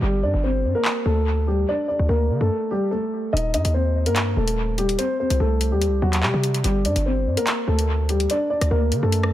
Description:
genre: hip hop, drill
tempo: 145 BPM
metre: 4/4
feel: half-time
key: G harmonic minor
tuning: A4 = 441 Hz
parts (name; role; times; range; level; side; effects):
- dark concert grand piano; melody; 0.0-9.3 s; F#3 to Eb5; -22 LUFS; left 1 dB; dub echo
- hard-hitting 808-style bass; bass; 0.0-9.3 s; Eb1 to D3; -21 LUFS; equal; none
- drill drum kit; drums; 0.8-9.3 s; handclaps, hi-hat, rim click; -27 LUFS; equal; dub echo
room: light reverb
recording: echo-heavy mix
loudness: -19 LUFS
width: side -13 dB against mid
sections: 0.0-9.3 A section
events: break 0.0-3.3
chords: 0.0 Gm; 1.7 D5; 3.3 Eb; 5.0 Cm; 6.6 Gm; 8.3 D

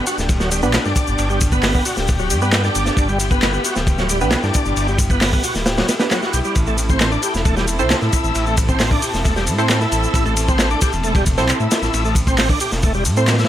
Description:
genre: breakbeat, breaks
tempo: 134 BPM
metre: 4/4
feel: straight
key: A dorian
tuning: A4 = 441 Hz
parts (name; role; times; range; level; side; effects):
- dark studio string section; sustained chords; 0.0-13.5 s; B3 to A4; -26 LUFS; left 2 dB; sidechain pumping
- bright tonewheel organ; riff; 0.0-13.5 s; F#3 to G4; -22 LUFS; equal; overdrive, chorus vibrato, slow rotary speaker, tube saturation, dub echo
- crunchy breakbeat drum kit; drums; 0.1-13.5 s; hi-hat, kick drum, ride cymbal, snare drum; -20 LUFS; equal; none
- punchy analog drum machine; drums; 0.1-13.5 s; handclaps, ride cymbal, shaker; -24 LUFS; left 1 dB; none
- dark detuned saw bass; bass; 0.2-13.4 s; D1 to A2; -21 LUFS; equal; tube saturation
- filtered dub chord stab; stabs; 0.6-13.2 s; B3 to C5; -25 LUFS; right 4 dB; chorus, dub echo
room: small room reverb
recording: none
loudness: -15 LUFS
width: side -12 dB against mid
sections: 0.0-13.5 A section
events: none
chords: 0.0 G; 6.6 Am

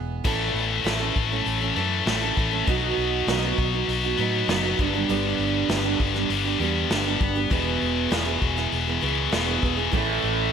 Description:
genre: quiet-loud alternative rock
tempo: 99 BPM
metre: 4/4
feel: straight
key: unclear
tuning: A4 = 440 Hz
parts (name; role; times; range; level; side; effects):
- picked steel-string acoustic guitar; arpeggios; 0.0-10.5 s; E2 to A4; -27 LUFS; right 7 dB; analog delay, slapback echo
- fingered electric bass; bass; 0.0-10.5 s; E1 to A2; -29 LUFS; equal; none
- scooped high-gain guitar; riff; 0.2-10.5 s; E2 to B3; -25 LUFS; left 8 dB; distortion
- vintage brush drum kit; drums; 0.2-10.4 s; crash cymbal, hi-hat, kick drum, snare drum; -28 LUFS; equal; none
- thick fuzz guitar; riff; 9.9-10.5 s; A2 to A3; -27 LUFS; right 12 dB; distortion
room: moderate lush hall reverb, RT60 1.9 s, studio reverb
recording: big arena sound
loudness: -21 LUFS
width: side -7 dB against mid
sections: 0.3-10.5 A section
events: none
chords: 0.3 A; 2.7 B; 4.8 G; 7.5 E; 9.9 A

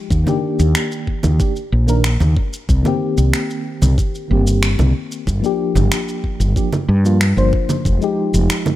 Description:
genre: sunset chillout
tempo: 93 BPM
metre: 4/4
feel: straight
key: C minor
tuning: A4 = 440 Hz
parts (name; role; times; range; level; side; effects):
- mellow FM electric piano; accompaniment; 0.0-8.8 s; Eb3 to C5; -21 LUFS; moving between left 7 dB and right 5 dB; chorus, tremolo, auto-pan, ping-pong delay
- woody fretless electric bass; bass; 0.1-8.5 s; F1 to G2; -14 LUFS; equal; none
- electronic kick drum; drums; 0.1-8.0 s; none; -19 LUFS; equal; small room reverb
- electronic shaker, congas and finger snaps; drums; 0.1-8.8 s; none; -22 LUFS; right 2 dB; small room reverb
room: digital ambience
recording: rough home demo mix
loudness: -14 LUFS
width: side -14 dB against mid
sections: 0.0-8.8 A section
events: none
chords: 0.1 Ebmaj7; 2.7 Cm7; 5.3 Gm7; 7.9 Fm9

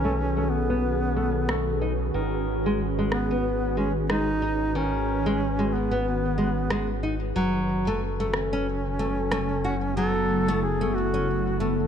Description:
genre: organic downtempo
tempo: 92 BPM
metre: 4/4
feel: swing 58% on 16ths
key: F# dorian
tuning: A4 = 440 Hz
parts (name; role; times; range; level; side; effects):
- warm duduk; melody; 0.0-11.6 s; B3 to A4; -29 LUFS; equal; ping-pong delay
- ethereal airy pad; sustained chords; 0.0-11.9 s; C#3 to B4; -29 LUFS; equal; ensemble chorus, built-in reverb
- nylon-string guitar; arpeggios; 0.0-11.8 s; D#3 to F#4; -28 LUFS; left 1 dB; low-pass filter, ping-pong delay
- round analog bass; bass; 0.0-11.9 s; F#1 to B1; -30 LUFS; equal; none
- electronic rim click; drums; 1.5-9.5 s; none; -31 LUFS; equal; studio reverb
room: light reverb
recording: none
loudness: -23 LUFS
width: side -8 dB against mid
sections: 0.0-11.9 A section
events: none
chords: 0.0 B7; 2.1 G#m7; 7.4 F#m

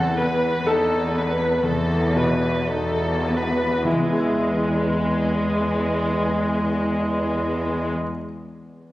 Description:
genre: classical, romantic movement for piano and orchestra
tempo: 50-67 BPM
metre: 4/4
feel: rubato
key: unclear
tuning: A4 = 441 Hz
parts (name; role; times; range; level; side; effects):
- clear concert grand piano; melody; 0.0-8.9 s; E2 to F#5; -25 LUFS; equal; none
- rich chamber violin section; melody; 0.0-7.9 s; G#3 to B4; -24 LUFS; left 1 dB; none
- warm chamber cello section; bass; 0.0-7.9 s; E2; -25 LUFS; equal; none
room: moderate scoring stage reverb, RT60 1.8 s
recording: recorded on a phone in the room, club reverb, compression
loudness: -19 LUFS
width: side -16 dB against mid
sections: 0.0-3.9 A section; 3.9-8.0 B section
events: slowing down 0.0-3.9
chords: 0.0 B7/E

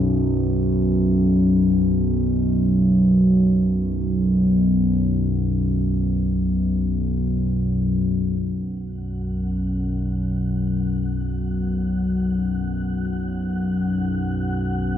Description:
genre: dark ambient drone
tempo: free time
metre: none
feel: none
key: unclear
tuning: A4 = 441 Hz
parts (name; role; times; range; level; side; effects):
- analog drone; drone; 0.0-15.0 s; B1 to F#2; -19 LUFS; equal; chorus
- wind-like tuned noise texture; texture; 9.2-15.0 s; F#5; -39 LUFS; right 1 dB; built-in reverb, analog chorus
room: wet lush hall reverb, RT60 2.6 s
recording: dreamy mix soaked in reverb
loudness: -19 LUFS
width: side -10 dB against mid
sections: 0.0-8.4 A section; 8.4-15.0 B section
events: fade-in on synth texture 8.4-15.0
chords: 0.0 B5

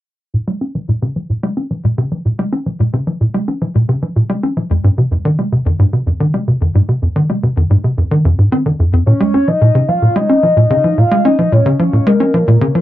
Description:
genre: ambient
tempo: 110 BPM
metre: 4/4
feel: straight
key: Bb minor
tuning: A4 = 440 Hz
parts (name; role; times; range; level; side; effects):
- tight sequencer bass; riff; 0.3-12.8 s; F2 to Db4; -12 LUFS; equal; wide subtle chorus, cassette tape, ping-pong delay
- soft octave-layered synth lead; melody; 9.1-12.8 s; Bb4 to F5; -15 LUFS; left 1 dB; chorus, phaser, cassette tape, ping-pong delay
room: wet booth ambience, RT60 0.2 s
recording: home recording on cassette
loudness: -12 LUFS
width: side -14 dB against mid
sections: 0.3-9.1 A section; 9.1-12.8 B section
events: filter sweep on analog synth bass 0.3-9.1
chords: 0.3 Bbm7; 4.7 Fm7; 9.1 Bbm7

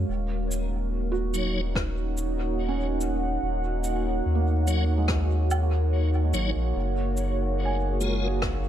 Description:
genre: ambient dub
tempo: 72 BPM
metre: 4/4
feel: straight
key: Eb minor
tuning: A4 = 440 Hz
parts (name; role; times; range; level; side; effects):
- warbly tape-like pad; sustained chords; 0.0-8.7 s; Bb3 to Gb5; -29 LUFS; right 2 dB; chorus, built-in reverb
- felt-muted upright piano; arpeggios; 0.0-8.7 s; Ab3 to Ab5; -36 LUFS; right 6 dB; dub echo
- warm sub bass; bass; 0.0-8.7 s; Eb1 to Eb2; -26 LUFS; equal; none
- cabasa, rim click and woodblock; drums; 0.5-8.6 s; none; -34 LUFS; left 1 dB; dub echo
- tonewheel organ; stabs; 1.3-8.3 s; Gb3 to Db5; -35 LUFS; left 2 dB; overdrive, chorus vibrato, fast rotary speaker, dub echo
- electronic kick drum; drums; 1.8-8.6 s; none; -31 LUFS; equal; none
room: little or no reverb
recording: none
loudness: -24 LUFS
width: side -10 dB against mid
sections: 0.1-8.7 A section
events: none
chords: 0.1 Ebm7; 6.8 Gbmaj9

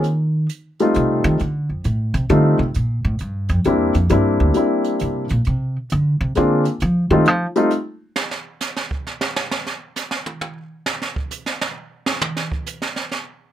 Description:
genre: jazz piano trio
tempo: 133 BPM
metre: 3/4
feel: swing 66% on 8ths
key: F mixolydian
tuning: A4 = 440 Hz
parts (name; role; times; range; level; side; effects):
- warm concert grand piano; melody; 0.0-7.7 s; G3 to F4; -17 LUFS; left 2 dB; none
- upright bass; bass; 0.0-7.5 s; D2 to F3; -18 LUFS; right 1 dB; none
- jazz brush drum kit; drums; 0.0-13.3 s; hi-hat, kick drum, snare drum, toms; -24 LUFS; right 3 dB; none
room: light reverb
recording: none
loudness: -18 LUFS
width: side -11 dB against mid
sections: 0.0-8.2 A section; 8.2-13.5 A section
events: upright bass solo 0.0-8.2; drum solo 8.2-13.5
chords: 0.0 F9; 2.8 C9; 5.5 Bb9 (rootless); 6.8 F7sus2; 8.2 N.C.

